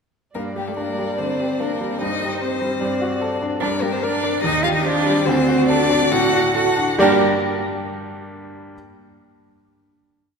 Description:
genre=quick classical-period movement for piano quartet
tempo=135-152 BPM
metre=4/4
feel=rubato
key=G minor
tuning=A4 = 440 Hz
part: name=warm violin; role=melody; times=0.3-7.2 s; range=G4 to F#5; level=-24 LUFS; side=left 6 dB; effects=none
part: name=warm cello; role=second line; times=0.3-7.2 s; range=G3 to Bb4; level=-22 LUFS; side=right 3 dB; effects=none
part: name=bright grand piano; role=accompaniment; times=0.3-8.8 s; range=D2 to D5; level=-23 LUFS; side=left 1 dB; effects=none
part: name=dark viola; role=accompaniment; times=0.4-7.2 s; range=D4 to D5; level=-26 LUFS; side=right 4 dB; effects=none
room=wet concert hall reverb, RT60 2.3 s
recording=none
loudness=-17 LUFS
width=side -5 dB against mid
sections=0.3-7.0 A section; 7.0-8.7 final chord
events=none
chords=0.3 Gm; 2.0 Cm/G; 2.8 D7/G; 3.6 Gm; 4.4 Cm/Eb; 5.3 D7; 7.0 Gm

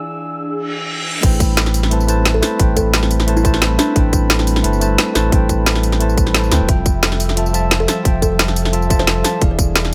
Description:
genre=liquid drum and bass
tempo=176 BPM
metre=4/4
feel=swing 53% on 16ths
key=A minor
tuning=A4 = 439 Hz
part: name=bell-like tine electric piano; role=accompaniment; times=0.0-9.9 s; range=E3 to A5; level=-23 LUFS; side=equal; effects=delay
part: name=airy breathy pad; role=sustained chords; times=0.0-9.9 s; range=G3 to E6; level=-29 LUFS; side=equal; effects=chorus, vintage 12-bit sampler grit, sidechain pumping
part: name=reverse cymbal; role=sound effects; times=0.7-1.2 s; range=none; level=-26 LUFS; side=equal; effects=none
part: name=sub bass with octave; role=bass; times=1.2-9.9 s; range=E1 to D2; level=-20 LUFS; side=equal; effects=none
part: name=drum and bass drum kit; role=drums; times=1.2-9.9 s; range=crash cymbal, hi-hat, snare drum, tambourine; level=-20 LUFS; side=equal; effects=overdrive
part: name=electronic kick drum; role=drums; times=1.2-9.7 s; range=none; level=-18 LUFS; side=equal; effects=none
part: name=kalimba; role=melody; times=2.3-4.1, 7.8-9.3 s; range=D4 to C5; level=-26 LUFS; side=equal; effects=delay
room=little or no reverb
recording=none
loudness=-15 LUFS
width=mono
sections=0.0-1.2 A section; 1.2-9.9 B section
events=reverse cymbal 0.7-1.2; drop 1.2-9.9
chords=0.0 E7b9; 1.2 Am9; 6.7 Fmaj9; 9.4 E7b9

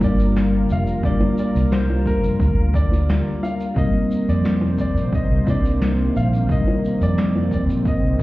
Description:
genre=sunset chillout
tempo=88 BPM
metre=4/4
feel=straight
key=C minor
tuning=A4 = 440 Hz
part: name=clear concert grand piano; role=melody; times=0.0-8.2 s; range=Bb4 to F5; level=-29 LUFS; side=equal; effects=digital delay
part: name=bell-like tine electric piano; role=accompaniment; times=0.0-8.2 s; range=G3 to Bb4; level=-23 LUFS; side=equal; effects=auto-pan, low-pass filter
part: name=lush unison pad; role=sustained chords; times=0.0-8.2 s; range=C3 to C5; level=-26 LUFS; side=left 1 dB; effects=chorus
part: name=fingered electric bass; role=bass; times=0.0-8.2 s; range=F1 to F2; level=-20 LUFS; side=equal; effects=none
part: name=electronic kick drum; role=drums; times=0.0-8.2 s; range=none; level=-22 LUFS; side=equal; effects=overdrive
part: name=vintage brush drum kit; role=drums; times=0.0-8.2 s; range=hi-hat, shaker, snare drum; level=-26 LUFS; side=left 1 dB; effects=none
part: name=bongos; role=percussion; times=0.0-7.5 s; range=none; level=-29 LUFS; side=right 1 dB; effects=none
room=light reverb, small room ambience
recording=heard muffled through a wall, club reverb, EQ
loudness=-17 LUFS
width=side -18 dB against mid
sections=0.0-8.2 A section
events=none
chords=0.0 Gm7; 3.8 Cm9

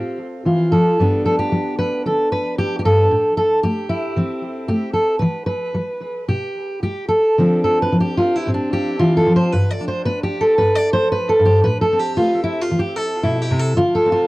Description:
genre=folk, solo fingerstyle acoustic guitar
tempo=113 BPM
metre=4/4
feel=rubato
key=unclear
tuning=A4 = 440 Hz
part: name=fingerpicked steel-string acoustic guitar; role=solo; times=0.0-14.3 s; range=G2 to D5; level=-16 LUFS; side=equal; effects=analog delay
room=light reverb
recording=home recording on cassette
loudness=-16 LUFS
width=side -20 dB against mid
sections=0.0-14.3 A section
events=none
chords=0.0 Dm7 (rootless); 1.0 G; 3.1 Am; 5.2 Em; 7.4 Dm7; 9.5 G; 11.7 Amadd9

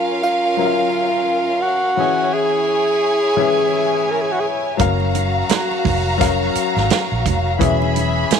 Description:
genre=lush 1970s-style soul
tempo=85 BPM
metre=4/4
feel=swing 58% on 16ths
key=F# major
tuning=A4 = 440 Hz
part: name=breathy tenor saxophone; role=melody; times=0.0-4.5 s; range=E#4 to A#4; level=-17 LUFS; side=right 1 dB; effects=none
part: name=warm studio violin section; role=second line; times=0.0-8.4 s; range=C#4 to B5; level=-22 LUFS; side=right 1 dB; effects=none
part: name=dark grand piano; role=accompaniment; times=0.0-8.4 s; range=E3 to E#5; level=-22 LUFS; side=left 11 dB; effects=none
part: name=vibraphone with hard mallets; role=texture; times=0.0-7.9 s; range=F#4 to A#4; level=-30 LUFS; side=left 1 dB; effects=none
part: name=vintage muted fingered electric bass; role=bass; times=4.8-8.2 s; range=E1 to A#1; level=-21 LUFS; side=right 2 dB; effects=none
part: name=warm soul drum kit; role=drums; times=4.8-8.4 s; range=hi-hat, kick drum, snare drum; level=-20 LUFS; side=right 6 dB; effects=none
part: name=congas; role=percussion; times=4.8-8.4 s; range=none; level=-28 LUFS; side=right 13 dB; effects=none
room=light reverb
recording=1960s-style stereo with parts hard left and right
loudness=-15 LUFS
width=side -7 dB against mid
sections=0.0-8.4 A section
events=none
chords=0.0 F#maj7; 2.0 E6; 4.8 F#maj7; 7.6 E6

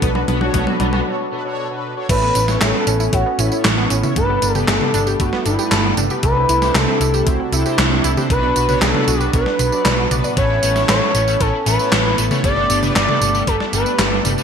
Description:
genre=synthwave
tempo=116 BPM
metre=4/4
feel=straight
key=unclear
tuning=A4 = 440 Hz
part: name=chorused pulse-width pad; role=sustained chords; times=0.0-14.4 s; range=C3 to E4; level=-26 LUFS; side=right 1 dB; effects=sidechain pumping
part: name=analog pluck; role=arpeggios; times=0.0-10.3 s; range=A3 to B5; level=-25 LUFS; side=right 3 dB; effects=chorus, digital delay
part: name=overdriven electric guitar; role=riff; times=0.0-1.0, 10.4-14.4 s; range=G3 to F#4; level=-27 LUFS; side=left 3 dB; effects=ensemble chorus, digital delay
part: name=mellow synth brass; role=stabs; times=0.0-14.4 s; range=G2 to D5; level=-23 LUFS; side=left 2 dB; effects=chorus, phaser, digital delay
part: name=hollow-body short-scale picked electric bass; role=bass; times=0.0-14.4 s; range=G1 to C2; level=-21 LUFS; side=equal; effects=none
part: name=electronic kick drum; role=drums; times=0.0-13.6 s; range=none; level=-21 LUFS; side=equal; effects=overdrive
part: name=gated 80s digital drum machine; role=drums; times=0.0-14.4 s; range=crash cymbal, handclaps, hi-hat, snare drum, tambourine, toms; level=-20 LUFS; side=right 1 dB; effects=gated reverb, gated reverb snare, overdrive
part: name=expressive portamento lead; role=melody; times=2.1-14.2 s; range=E4 to D5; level=-20 LUFS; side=equal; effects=chorus, digital delay
room=moderate plate reverb, RT60 1.3 s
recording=bright 1980s-style digital production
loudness=-14 LUFS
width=side -7 dB against mid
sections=0.0-2.1 A section; 2.1-14.4 B section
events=drum fill 0.0-1.1; filter sweep on synth arpeggio sound 0.0-2.1; break 1.1-2.1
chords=0.0 Bm7; 2.1 Aadd9; 4.2 Gadd9; 6.2 C6; 8.3 Bm; 10.4 Aadd9; 12.4 Gadd9

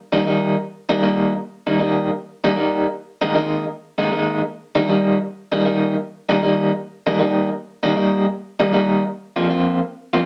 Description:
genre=blues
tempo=156 BPM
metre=4/4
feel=swing 66% on 8ths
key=Eb major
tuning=A4 = 441 Hz
part: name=electric guitar through a small old amp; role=solo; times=0.1-10.3 s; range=Eb3 to F4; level=-19 LUFS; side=equal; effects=tremolo
room=wet studio reverb, RT60 0.6 s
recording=none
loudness=-20 LUFS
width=mono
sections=0.0-10.3 A section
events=none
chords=0.0 Eb; 3.0 Absus2; 4.5 Eb; 9.1 Bbsus2

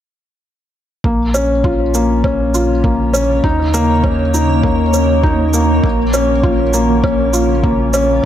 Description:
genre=piano and strings electronica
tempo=100 BPM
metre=4/4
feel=straight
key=Bb minor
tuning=A4 = 438 Hz
part: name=granular cloud pad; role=sustained chords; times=2.7-8.3 s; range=Db3 to Db5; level=-20 LUFS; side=left 1 dB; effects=built-in reverb, sidechain pumping
part: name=felt-muted upright piano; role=riff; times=1.0-8.3 s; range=Bb3 to F4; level=-14 LUFS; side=left 1 dB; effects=low-pass filter, ping-pong delay
part: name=warm sub bass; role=bass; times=1.0-8.2 s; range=Bb1 to Eb2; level=-17 LUFS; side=right 1 dB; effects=sidechain pumping
part: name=electronic kick drum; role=drums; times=1.0-7.8 s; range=none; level=-17 LUFS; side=right 1 dB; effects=overdrive
part: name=shaker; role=drums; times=1.3-8.1 s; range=none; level=-24 LUFS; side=right 4 dB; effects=none
room=light reverb, digital ambience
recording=none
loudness=-12 LUFS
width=side -10 dB against mid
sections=1.0-8.3 A section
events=none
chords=1.0 Bbm; 3.4 Ebm7; 5.8 Bbm

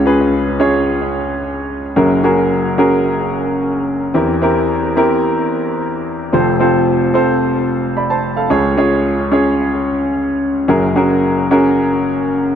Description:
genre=pop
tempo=110 BPM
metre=4/4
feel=straight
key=unclear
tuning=A4 = 441 Hz
part: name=clear grand piano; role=solo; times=0.0-12.6 s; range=F1 to Cb6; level=-13 LUFS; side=equal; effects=tape echo
room=moderate lush hall reverb, RT60 2.3 s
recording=dark, warm production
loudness=-13 LUFS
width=side -8 dB against mid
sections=0.0-12.6 A section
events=none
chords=0.0 Db; 2.0 Gbadd9; 4.2 C7/E; 6.3 F; 8.5 Db; 10.7 Gbadd9

